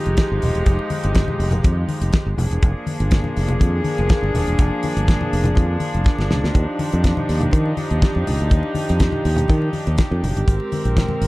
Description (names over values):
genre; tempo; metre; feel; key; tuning
disco; 122 BPM; 4/4; straight; Eb major; A4 = 440 Hz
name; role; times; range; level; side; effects
warm studio string section; sustained chords; 0.0-11.3 s; F3 to Bb4; -24 LUFS; equal; none
fingered electric bass; bass; 0.1-11.3 s; Eb1 to Eb3; -20 LUFS; equal; none
damped 70s drum kit; drums; 0.1-11.3 s; hi-hat, kick drum, snare drum; -19 LUFS; equal; none
congas; percussion; 0.2-11.2 s; none; -27 LUFS; left 2 dB; none
room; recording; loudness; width
little or no reverb; dark, warm production; -17 LUFS; side -20 dB against mid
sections
0.0-11.3 A section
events
drum fill 6.1-6.5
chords
0.0 Fm9; 2.4 Bb7; 6.5 Ebmaj9; 10.5 Abmaj9